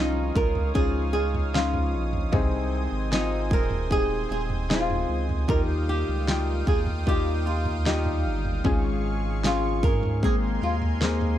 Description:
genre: pop ballad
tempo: 76 BPM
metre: 4/4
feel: straight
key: Db major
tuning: A4 = 440 Hz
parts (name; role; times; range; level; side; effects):
- flamenco guitar; melody; 0.0-11.4 s; Eb4 to Bb4; -29 LUFS; right 1 dB; none
- warm upright piano; accompaniment; 0.0-11.4 s; Ab2 to G5; -30 LUFS; left 6 dB; none
- lush unison pad; sustained chords; 0.0-11.4 s; Ab4 to Eb6; -36 LUFS; equal; chorus
- direct-recorded clean electric guitar; arpeggios; 0.0-11.4 s; Ab2 to Bb4; -36 LUFS; right 8 dB; none
- saturated sub bass; bass; 0.0-11.4 s; Eb1 to Ab2; -27 LUFS; equal; none
- pop drum kit; drums; 0.4-11.4 s; kick drum, snare drum, toms; -27 LUFS; right 1 dB; none
room: digital ambience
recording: dark, warm production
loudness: -22 LUFS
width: side -12 dB against mid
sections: 0.0-11.4 A section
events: none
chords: 0.0 Dbadd9; 2.3 Ab; 5.5 Ebadd9; 8.6 Db/Ab; 10.2 Abadd9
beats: 0.75 1.54 | 2.33 3.12 3.91 4.70 | 5.49 6.28 7.07 7.86 | 8.65 9.44 10.22 11.01

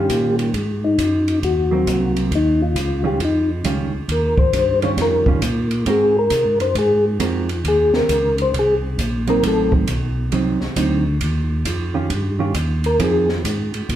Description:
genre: soul jazz organ trio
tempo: 135 BPM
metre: 4/4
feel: swing 65% on 8ths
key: unclear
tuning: A4 = 440 Hz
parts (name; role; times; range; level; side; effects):
- percussive tonewheel organ; melody; 0.0-9.7, 12.9-13.3 s; Eb4 to Db5; -18 LUFS; left 2 dB; slow rotary speaker, chorus vibrato, plate reverb
- hollow-body jazz guitar; accompaniment; 0.0-13.3 s; Eb3 to Bb4; -22 LUFS; right 5 dB; none
- tonewheel organ; bass; 0.0-14.0 s; A1 to C3; -21 LUFS; equal; overdrive, slow rotary speaker
- open jazz drum kit; drums; 0.1-14.0 s; hi-hat, kick drum, ride cymbal, snare drum; -25 LUFS; right 1 dB; none
room: wet club reverb, RT60 0.8 s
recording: heard from further back in the room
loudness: -16 LUFS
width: side -11 dB against mid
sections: 0.0-14.0 A section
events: tonewheel organ solo 0.0-14.0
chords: 0.0 Eb9; 0.5 Ab9; 2.3 Eb9; 5.9 Ab9; 9.4 Adim7; 11.2 Eb9; 13.0 Fm7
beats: 0.09 | 0.54 0.98 1.43 1.87 | 2.31 2.76 3.20 3.65 | 4.09 4.54 4.98 5.42 | 5.87 6.31 6.76 7.20 | 7.65 8.09 8.54 8.98 | 9.43 9.87 10.32 10.76 | 11.21 11.66 12.10 12.55 | 13.00 13.45 13.89

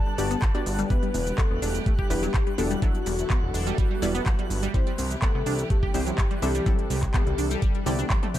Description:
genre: progressive house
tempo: 125 BPM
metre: 4/4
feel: straight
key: unclear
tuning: A4 = 441 Hz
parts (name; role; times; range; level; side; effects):
- soft octave-layered synth lead; melody; 0.0-8.4 s; F#4 to A5; -32 LUFS; left 3 dB; chorus, phaser, vintage 12-bit sampler grit, sidechain pumping, ping-pong delay
- warm symphonic string section; sustained chords; 0.0-8.4 s; C3 to D5; -36 LUFS; right 2 dB; vintage 12-bit sampler grit, sidechain pumping
- tight sequenced synth; arpeggios; 0.0-8.4 s; G2 to G4; -33 LUFS; equal; chorus, sidechain pumping, ping-pong delay
- wide unison pluck; stabs; 0.0-8.4 s; G3 to D5; -32 LUFS; left 1 dB; sidechain pumping, ping-pong delay
- twinkling granular texture; texture; 0.0-8.4 s; F#6; -44 LUFS; right 1 dB; built-in reverb, sidechain pumping
- fat analog bass; bass; 0.2-8.4 s; E1 to C2; -28 LUFS; equal; sidechain pumping
- pop drum kit; drums; 0.2-8.4 s; cabasa, handclaps, hi-hat, toms; -33 LUFS; equal; sidechain pumping on hats, sidechain pumping on perc, sidechain pumping on toms
- electronic kick drum; drums; 0.4-8.2 s; none; -24 LUFS; equal; none
room: little or no reverb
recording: dark, warm production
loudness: -22 LUFS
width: side -12 dB against mid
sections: 0.0-8.4 A section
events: drum fill 7.9-8.4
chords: 0.0 Gmaj7; 0.9 Em7; 4.7 C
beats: 0.42 | 0.90 1.38 1.86 2.34 | 2.82 3.30 3.78 4.26 | 4.74 5.22 5.70 6.18 | 6.66 7.14 7.62 8.10

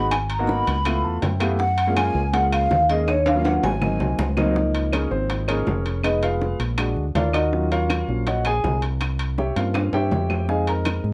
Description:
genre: Afro-Cuban jazz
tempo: 162 BPM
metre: 4/4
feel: straight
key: Db major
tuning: A4 = 440 Hz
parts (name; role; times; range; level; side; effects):
- vibraphone with medium mallets; melody; 0.0-4.3 s; Db5 to B5; -26 LUFS; equal; plate reverb
- breathy hollow jazz flute; second line; 0.0-4.3 s; Db5 to Cb6; -32 LUFS; equal; none
- warm upright piano; accompaniment; 0.0-11.1 s; F3 to Bb5; -26 LUFS; equal; none
- fingered electric bass; bass; 0.0-11.1 s; F1 to Ab2; -26 LUFS; equal; none
- bongos; percussion; 0.1-11.1 s; none; -32 LUFS; equal; none
- claves; percussion; 0.1-11.0 s; none; -35 LUFS; equal; none
- timbales; percussion; 0.1-11.0 s; none; -31 LUFS; equal; none
room: moderate studio ambience, RT60 0.5 s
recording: worn, warbling old tape, cassette tape, warbly pitch drift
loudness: -22 LUFS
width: mono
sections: 0.0-4.6 A section; 4.6-11.1 B section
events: upright piano fill 0.9-1.6; drum fill 3.1-4.6, 9.8-10.5; upright piano solo 4.6-11.1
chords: 0.1 Abm9; 0.9 Db7alt; 1.6 Gbmaj7; 3.1 Ebm9; 3.8 Ab9; 4.6 Db69; 6.0 Fm7b5; 6.8 Bb7b13; 7.5 Ebm9; 9.0 C7b9; 10.5 Fm7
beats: | 0.12 0.49 0.86 1.23 | 1.60 1.97 2.34 2.71 | 3.08 3.45 3.82 4.19 | 4.56 4.93 5.30 5.67 | 6.04 6.41 6.78 7.15 | 7.53 7.90 8.27 8.64 | 9.01 9.38 9.75 10.12 | 10.49 10.86

